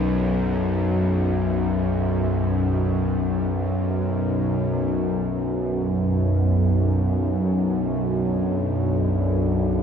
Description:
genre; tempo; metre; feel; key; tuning
dark ambient drone; free time; none; none; B minor; A4 = 440 Hz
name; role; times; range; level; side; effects
bowed-like drone; drone; 0.0-9.8 s; B1 to F#2; -20 LUFS; equal; built-in reverb
deep dark ambient pad; sustained chords; 8.5-9.8 s; B3 to D5; -35 LUFS; right 2 dB; none
room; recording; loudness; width
wet cathedral reverb, RT60 5.6 s; worn, warbling old tape, cassette tape, warbly pitch drift; -20 LUFS; side -7 dB against mid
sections
0.0-4.9 A section; 4.9-9.8 B section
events
none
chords
0.0 B5; 4.9 Bm

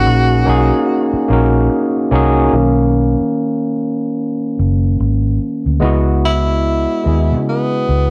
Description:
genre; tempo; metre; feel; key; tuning
R&B, neo-soul; 73 BPM; 4/4; swing 61% on 16ths; unclear; A4 = 440 Hz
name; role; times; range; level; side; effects
breathy tenor saxophone; melody; 0.0-8.1 s; B3 to F#4; -21 LUFS; equal; none
overdriven tine electric piano; accompaniment; 0.0-8.1 s; D#3 to D#5; -18 LUFS; equal; none
vintage muted fingered electric bass; bass; 0.0-8.1 s; F#1 to C#3; -17 LUFS; equal; none
room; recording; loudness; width
light reverb, studio reverb; worn, warbling old tape, cassette tape, warbly pitch drift; -15 LUFS; mono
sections
0.0-2.5 A section; 2.5-5.8 B section; 5.8-8.1 C section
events
tine electric piano solo 2.5-5.8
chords
0.0 Bmaj9 (rootless); 2.5 Bmaj9; 5.8 C#m9

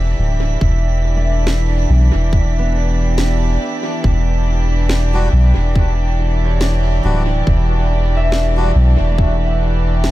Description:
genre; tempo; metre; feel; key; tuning
ambient dub; 70 BPM; 4/4; swing 56% on 16ths; E dorian; A4 = 440 Hz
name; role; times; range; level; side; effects
warm studio string section; sustained chords; 0.0-10.1 s; E3 to G4; -22 LUFS; right 1 dB; none
concert harp; arpeggios; 0.0-10.1 s; A3 to G5; -27 LUFS; left 1 dB; analog delay
soft dub sub bass; bass; 0.0-10.1 s; D1 to B1; -14 LUFS; equal; tube saturation
drifting glass-harmonics texture; texture; 0.0-10.1 s; E5; -30 LUFS; right 4 dB; chorus, built-in reverb
electronic kick drum; drums; 0.6-9.4 s; none; -16 LUFS; equal; studio ambience
electronic snare drum; drums; 1.5-10.1 s; none; -28 LUFS; equal; studio ambience, dub echo
melodica; stabs; 5.1-8.7 s; G3 to F#4; -27 LUFS; left 2 dB; dub echo
room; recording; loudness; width
light reverb, small room ambience; none; -13 LUFS; side -16 dB against mid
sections
0.0-10.1 A section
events
fade-in on string section 0.0-10.1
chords
0.0 Em9

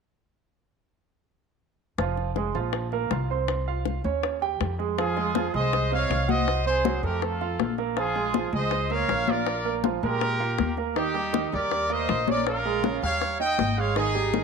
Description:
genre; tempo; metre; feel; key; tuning
latin, salsa; 160 BPM; 4/4; straight; F minor; A4 = 440 Hz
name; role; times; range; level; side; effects
clear concert grand piano; accompaniment; 2.0-14.4 s; C3 to G5; -28 LUFS; right 12 dB; none
upright bass; bass; 2.0-14.4 s; F1 to Bb2; -30 LUFS; equal; none
bongos; percussion; 2.0-14.4 s; none; -33 LUFS; left 14 dB; none
bright trumpet section; melody; 5.0-14.4 s; Eb4 to G5; -27 LUFS; equal; none
congas; percussion; 5.0-14.4 s; none; -30 LUFS; left 15 dB; none
room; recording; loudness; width
moderate spring reverb, RT60 1.4 s, small room ambience; 1960s-style stereo with parts hard left and right; -23 LUFS; side -5 dB against mid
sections
2.0-5.0 A section; 5.0-14.4 B section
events
none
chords
2.0 Fm; 2.7 Bb5; 3.5 Csus4; 4.2 Eb7; 5.0 Fm7; 6.5 C5; 7.2 F; 8.0 Bbm7; 9.5 Bb5; 11.0 Ebmaj7; 12.5 Bbm7; 13.2 Eb7

